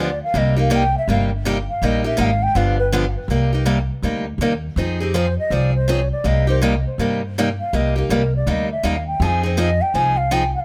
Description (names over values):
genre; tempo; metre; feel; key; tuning
acoustic string swing (jazz manouche); 162 BPM; 4/4; swing 61% on 8ths; C minor; A4 = 440 Hz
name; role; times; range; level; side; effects
mellow hollow bansuri; melody; 0.0-10.6 s; G4 to A5; -24 LUFS; equal; tape echo
picked steel-string acoustic guitar; accompaniment; 0.0-10.4 s; C3 to Ab4; -24 LUFS; equal; none
upright bass; bass; 0.0-10.5 s; G1 to G2; -23 LUFS; equal; none
room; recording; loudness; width
light reverb; close, detailed microphones; -19 LUFS; mono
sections
0.0-3.3 A section; 3.3-10.6 A section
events
bansuri solo 0.0-3.3, 3.3-10.6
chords
0.3 Cm7; 2.6 G7; 3.3 Cm7; 4.8 Fm7; 6.3 Cm7; 9.2 Fm7